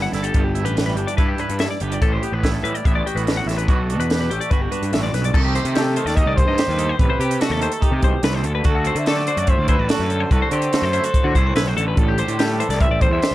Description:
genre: math rock and midwest emo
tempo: 144 BPM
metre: 4/4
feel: straight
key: unclear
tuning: A4 = 441 Hz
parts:
  - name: twangy electric guitar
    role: accompaniment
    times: 0.0-13.3 s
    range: E2 to G4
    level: -26 LUFS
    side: right 7 dB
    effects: tremolo
  - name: twelve-string electric guitar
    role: arpeggios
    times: 0.0-13.3 s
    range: F#4 to F#5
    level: -26 LUFS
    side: left 7 dB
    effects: none
  - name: fuzz picked electric bass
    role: bass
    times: 0.0-13.3 s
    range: G1 to D3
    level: -22 LUFS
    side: equal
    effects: overdrive
  - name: compact cocktail drum kit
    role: drums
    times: 0.1-13.3 s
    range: crash cymbal, hi-hat, kick drum, snare drum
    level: -20 LUFS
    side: equal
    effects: none
  - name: breathy trumpet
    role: melody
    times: 5.8-13.3 s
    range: G4 to E5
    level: -24 LUFS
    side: equal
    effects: none
room: little or no reverb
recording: dark, warm production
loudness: -17 LUFS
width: side -15 dB against mid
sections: 0.0-5.3 A section; 5.3-13.3 B section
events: none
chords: 0.1 Em7/G; 2.0 A9sus4; 3.7 Bm7; 4.5 Gmaj9; 5.3 Cm6; 8.4 D7; 12.0 Am11

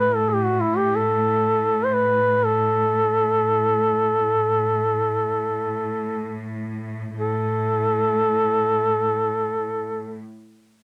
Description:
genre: caucasian folk, Caucasian lament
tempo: free time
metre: none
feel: none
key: unclear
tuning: A4 = 440 Hz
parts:
  - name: mellow duduk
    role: melody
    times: 0.0-10.2 s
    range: E4 to C5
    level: -22 LUFS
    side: equal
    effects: none
  - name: clear studio cello section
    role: drone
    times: 0.0-10.2 s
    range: A2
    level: -30 LUFS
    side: equal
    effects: none
room: moderate studio reverb, RT60 0.6 s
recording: dry, close 1970s-style studio recording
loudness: -22 LUFS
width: mono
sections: 0.0-7.2 A section; 7.2-10.8 B section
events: slowing down 0.0-7.2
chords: none

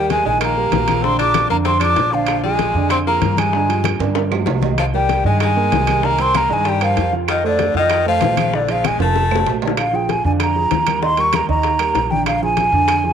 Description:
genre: Afro-Cuban jazz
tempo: 192 BPM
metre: 4/4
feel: straight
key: Bb mixolydian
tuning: A4 = 440 Hz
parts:
  - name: breathy mellow silver concert flute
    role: melody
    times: 0.0-13.1 s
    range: D5 to D6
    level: -18 LUFS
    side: right 1 dB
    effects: none
  - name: edgy tenor saxophone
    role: second line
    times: 0.0-9.6 s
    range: D3 to D4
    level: -23 LUFS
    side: left 13 dB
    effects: none
  - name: dark baby grand piano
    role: accompaniment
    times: 0.0-13.1 s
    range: D3 to F5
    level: -23 LUFS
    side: right 10 dB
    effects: none
  - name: upright bass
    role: bass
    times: 0.0-13.1 s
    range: F1 to G2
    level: -22 LUFS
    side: left 1 dB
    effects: none
  - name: bongos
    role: percussion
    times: 0.1-13.1 s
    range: none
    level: -27 LUFS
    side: left 15 dB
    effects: none
  - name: congas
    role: percussion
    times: 0.1-13.1 s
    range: none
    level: -26 LUFS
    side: left 11 dB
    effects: none
  - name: timbales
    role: percussion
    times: 0.1-13.0 s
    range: none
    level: -26 LUFS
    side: right 12 dB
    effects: none
  - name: claves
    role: percussion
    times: 0.4-13.0 s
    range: none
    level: -30 LUFS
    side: right 12 dB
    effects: none
room: moderate spring reverb, RT60 2.7 s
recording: 1960s-style stereo with parts hard left and right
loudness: -14 LUFS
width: side -8 dB against mid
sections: 0.0-9.8 A section; 9.8-13.1 A section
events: drum fill 4.0-4.8, 9.0-9.8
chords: 0.0 Eb; 1.0 Bb7; 3.5 G5; 4.8 Cm7; 7.3 F7; 8.5 Bb7; 9.2 F; 9.8 Bb7; 11.0 Eb; 12.3 Bb7

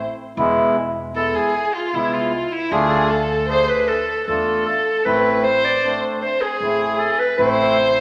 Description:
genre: klezmer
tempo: 77 BPM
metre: 3/4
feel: straight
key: A harmonic minor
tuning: A4 = 440 Hz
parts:
  - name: upright bass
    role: bass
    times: 0.0-8.0 s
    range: E1 to E2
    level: -34 LUFS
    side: equal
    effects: none
  - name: mellow accordion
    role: accompaniment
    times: 0.4-7.8 s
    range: G#3 to G#4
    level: -24 LUFS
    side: equal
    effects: none
  - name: mellow clarinet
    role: melody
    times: 1.2-8.0 s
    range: E4 to D5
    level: -23 LUFS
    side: equal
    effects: none
  - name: dark violin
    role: second line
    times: 1.2-8.0 s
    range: E4 to C5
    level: -24 LUFS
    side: equal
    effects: none
room: wet large studio reverb, RT60 1.4 s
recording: none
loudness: -19 LUFS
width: mono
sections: 0.0-8.0 A section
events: none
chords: 0.4 E; 2.7 Dm; 5.1 Am

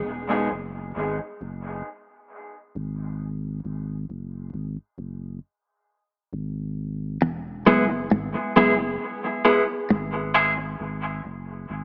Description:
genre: reggae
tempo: 67 BPM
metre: 4/4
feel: swing 57% on 16ths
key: unclear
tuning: A4 = 439 Hz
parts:
  - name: warm sub bass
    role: bass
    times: 0.0-11.8 s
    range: E1 to G#1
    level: -34 LUFS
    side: equal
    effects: none
  - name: clean electric guitar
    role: riff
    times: 7.2-10.2 s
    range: E2 to G#2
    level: -28 LUFS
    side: equal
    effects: dub echo
  - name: mellow electric guitar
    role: accompaniment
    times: 7.7-11.4 s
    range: G#3 to G#4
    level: -25 LUFS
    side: equal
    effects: high-pass filter, low-pass filter, dub echo
room: moderate plate reverb, RT60 2.9 s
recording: echo-heavy mix, small speaker sound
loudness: -25 LUFS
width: mono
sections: 0.0-10.8 A section; 10.8-11.8 B section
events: break 0.1-7.2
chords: 0.1 E; 3.6 F#sus2; 7.2 E; 10.8 G#m

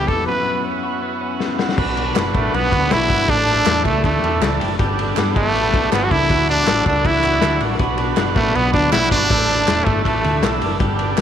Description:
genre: jangly indie pop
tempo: 160 BPM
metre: 4/4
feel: straight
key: B minor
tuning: A4 = 440 Hz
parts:
  - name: growling trumpet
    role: melody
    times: 0.0-10.6 s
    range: A3 to B4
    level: -19 LUFS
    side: right 1 dB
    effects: tape echo
  - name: overdriven combo organ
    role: accompaniment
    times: 0.0-11.2 s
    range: A3 to B4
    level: -24 LUFS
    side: right 14 dB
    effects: none
  - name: twelve-string electric guitar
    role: arpeggios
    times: 0.0-11.2 s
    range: F#2 to A4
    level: -25 LUFS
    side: left 9 dB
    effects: tape echo
  - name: hollow-body short-scale fingered electric bass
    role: bass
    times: 0.0-11.2 s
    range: E1 to G2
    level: -23 LUFS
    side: right 1 dB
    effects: none
  - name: raw garage drum kit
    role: drums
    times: 0.1-11.2 s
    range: crash cymbal, hi-hat, kick drum, ride cymbal, snare drum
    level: -21 LUFS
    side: left 3 dB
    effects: none
  - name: group handclap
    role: percussion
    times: 2.2-11.2 s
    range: none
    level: -30 LUFS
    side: right 15 dB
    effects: none
room: light reverb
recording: 1960s-style stereo with parts hard left and right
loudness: -15 LUFS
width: side -9 dB against mid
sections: 0.0-1.8 A section; 1.8-11.2 B section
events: break 0.3-1.8; drum fill 1.4-1.8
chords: 0.3 F#7sus4; 1.8 Bm; 3.3 Asus4; 4.8 Gadd9; 6.3 Dadd9; 7.8 Bm; 9.3 Asus4

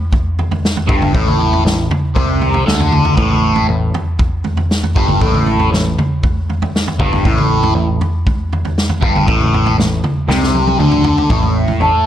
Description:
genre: psychedelic rock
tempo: 118 BPM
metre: 4/4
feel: straight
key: A minor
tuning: A4 = 441 Hz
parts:
  - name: vintage drum kit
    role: drums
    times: 0.1-11.9 s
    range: kick drum, snare drum, toms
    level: -15 LUFS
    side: equal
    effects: none
  - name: fuzz guitar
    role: riff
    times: 0.9-12.1 s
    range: G2 to A3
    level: -16 LUFS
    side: left 1 dB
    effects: distortion, phaser
  - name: picked electric bass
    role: bass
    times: 0.9-11.9 s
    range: G1 to D2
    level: -18 LUFS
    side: equal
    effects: none
  - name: mellow hollow jazz flute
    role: melody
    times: 11.8-12.1 s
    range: A5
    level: -12 LUFS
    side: right 1 dB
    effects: none
room: light reverb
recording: lossy compression artefacts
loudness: -12 LUFS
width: side -11 dB against mid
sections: 0.0-11.3 A section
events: drum fill 10.3-11.3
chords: 0.0 Am; 11.3 N.C.

